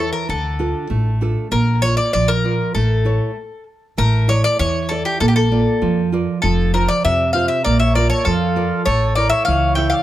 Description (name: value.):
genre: greek folk, Greek bouzouki band.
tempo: 98 BPM.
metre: 2/4.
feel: straight.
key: unclear.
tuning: A4 = 440 Hz.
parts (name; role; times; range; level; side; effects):
Greek bouzouki; melody; 0.0-10.0 s; G4 to G5; -19 LUFS; left 2 dB; tape echo.
nylon-string guitar; accompaniment; 0.0-10.0 s; C3 to D5; -21 LUFS; right 4 dB; none.
upright bass; bass; 0.0-9.9 s; F1 to F2; -19 LUFS; equal; none.
mellow accordion; second line; 7.6-10.0 s; F4 to E5; -25 LUFS; right 2 dB; none.
room: moderate small room ambience, RT60 0.5 s.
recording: none.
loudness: -15 LUFS.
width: side -13 dB against mid.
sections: 0.0-4.0 A section; 4.0-10.0 A section.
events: stop 3.4-4.0.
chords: 0.3 Dm; 1.5 Bb; 2.8 A; 4.0 Asus4; 5.2 Bb; 6.4 F; 7.7 Bb; 8.9 A.